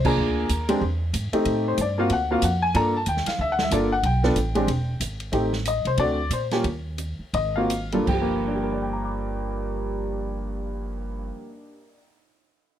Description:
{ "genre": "jazz piano trio", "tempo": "157-186 BPM", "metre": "4/4", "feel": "swing 61% on 8ths", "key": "G minor", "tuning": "A4 = 441 Hz", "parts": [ { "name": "clear upright piano", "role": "melody", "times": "0.0-12.3 s", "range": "G2 to D6", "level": "-24 LUFS", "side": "left 1 dB", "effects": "none" }, { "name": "upright bass", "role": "bass", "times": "0.0-11.3 s", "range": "E1 to Bb2", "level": "-27 LUFS", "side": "right 1 dB", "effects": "none" }, { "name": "open jazz drum kit", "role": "drums", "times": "0.0-11.0 s", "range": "crash cymbal, cymbal swell, hi-hat, kick drum, ride cymbal, snare drum", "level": "-31 LUFS", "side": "right 2 dB", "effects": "none" } ], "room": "light reverb", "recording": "none", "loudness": "-22 LUFS", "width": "side -10 dB against mid", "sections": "0.0-5.3 A section; 5.3-8.1 B section; 8.1-11.1 C section", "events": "band accent 0.0; slowing down 5.3-8.1", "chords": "0.2 Gm7 (rootless); 0.8 Eaug; 1.5 Am7b5; 2.1 D(#9); 2.8 Gm9; 4.0 Bm7; 4.7 Em; 5.3 Am7b5; 6.0 D7; 6.6 N.C.; 7.3 Absus2; 8.1 Gm7", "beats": "| 0.18 0.50 0.82 1.14 | 1.46 1.78 2.11 2.43 | 2.75 3.07 3.39 3.72 | 4.04 4.36 4.68 5.00 | 5.33 5.65 5.98 6.31 | 6.64 6.99 7.34 7.70 | 8.08 8.46 8.84 9.22 | 9.60 9.98 10.36 10.74" }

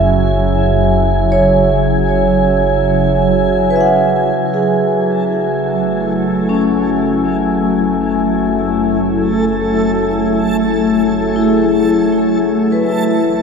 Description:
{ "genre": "ambient", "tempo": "free time", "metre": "none", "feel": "none", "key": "F# minor", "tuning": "A4 = 440 Hz", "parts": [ { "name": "glassy FM pad", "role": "sustained chords", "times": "0.0-13.4 s", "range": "C#3 to G#5", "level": "-14 LUFS", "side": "left 1 dB", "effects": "ensemble chorus, built-in reverb" }, { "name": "vibraphone with medium mallets", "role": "arpeggios", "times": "0.0-13.4 s", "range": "C#4 to F#5", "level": "-17 LUFS", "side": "right 1 dB", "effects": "diffuse ambient delay" }, { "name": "deep rumbling drone", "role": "bass", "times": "0.0-13.4 s", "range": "F#1", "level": "-22 LUFS", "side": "equal", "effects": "built-in reverb" }, { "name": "pedal harmonium", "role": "drone", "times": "0.0-13.4 s", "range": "C#3 to F#3", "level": "-25 LUFS", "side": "right 1 dB", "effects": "stereo widening" }, { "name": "backwards swelling texture", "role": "texture", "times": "5.0-13.4 s", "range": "A4", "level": "-24 LUFS", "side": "right 1 dB", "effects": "built-in reverb" } ], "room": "wet cathedral reverb, RT60 5.1 s", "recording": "in a vast, echoing space", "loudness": "-12 LUFS", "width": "side -6 dB against mid", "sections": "0.0-4.4 A section; 4.4-13.4 B section", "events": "fade-in on synth drone 4.4-13.4", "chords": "0.0 C#m/F#; 4.4 F#m9", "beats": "free time" }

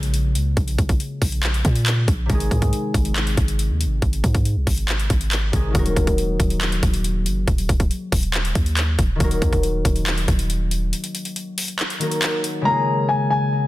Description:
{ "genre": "hip hop, trap", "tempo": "139 BPM", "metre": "4/4", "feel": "half-time", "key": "unclear", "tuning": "A4 = 440 Hz", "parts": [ { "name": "concert harp", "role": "accompaniment", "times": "0.0-13.7 s", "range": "C3 to Bb4", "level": "-26 LUFS", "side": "left 2 dB", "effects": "low-pass filter" }, { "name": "warm 808-style bass", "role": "bass", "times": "0.0-10.9 s", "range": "Eb1 to Bb2", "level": "-21 LUFS", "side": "equal", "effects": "none" }, { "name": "trap drum kit", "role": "drums", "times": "0.0-12.5 s", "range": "handclaps, hi-hat, kick drum", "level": "-21 LUFS", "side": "equal", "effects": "overdrive" }, { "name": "dark concert grand piano", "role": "melody", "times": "12.7-13.7 s", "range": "Ab5 to Bb5", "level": "-19 LUFS", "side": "left 2 dB", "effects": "low-pass filter, ping-pong delay" } ], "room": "studio ambience", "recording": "dense, heavily limited modern master", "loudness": "-18 LUFS", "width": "side -16 dB against mid", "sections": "0.0-12.7 A section; 12.7-13.7 B section", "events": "break 10.9-12.7", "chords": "0.0 Bbm7; 2.3 Ab; 5.7 Ebm; 12.7 Bbm7", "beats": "0.14 | 0.57 1.00 1.43 1.86 | 2.30 2.73 3.16 3.59 | 4.02 4.45 4.89 5.32 | 5.75 6.18 6.61 7.04 | 7.48 7.91 8.34 8.77 | 9.20 9.63 10.06 10.50 | 10.93 11.36 11.79 12.22 | 12.65 13.09 13.52" }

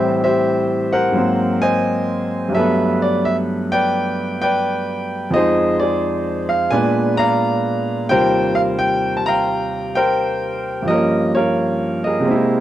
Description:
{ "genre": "solo jazz", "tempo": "86 BPM", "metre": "4/4", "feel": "swing 67% on 8ths", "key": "unclear", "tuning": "A4 = 436 Hz", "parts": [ { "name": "clear baby grand piano", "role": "solo", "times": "0.0-12.6 s", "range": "Eb2 to Bb5", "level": "-16 LUFS", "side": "equal", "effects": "none" } ], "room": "light reverb", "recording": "dark, warm production", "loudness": "-16 LUFS", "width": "side -12 dB against mid", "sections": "0.0-12.6 A section", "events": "none", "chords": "0.0 Am7; 1.1 Ab9; 2.5 Gmaj9; 5.3 Fm7; 6.7 Bb7b9; 8.1 Eb69; 10.9 Gm7b5", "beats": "0.45 1.15 1.84 | 2.54 3.23 3.93 4.62 | 5.32 6.01 6.70 7.40 | 8.09 8.79 9.48 10.18 | 10.87 11.56 12.26" }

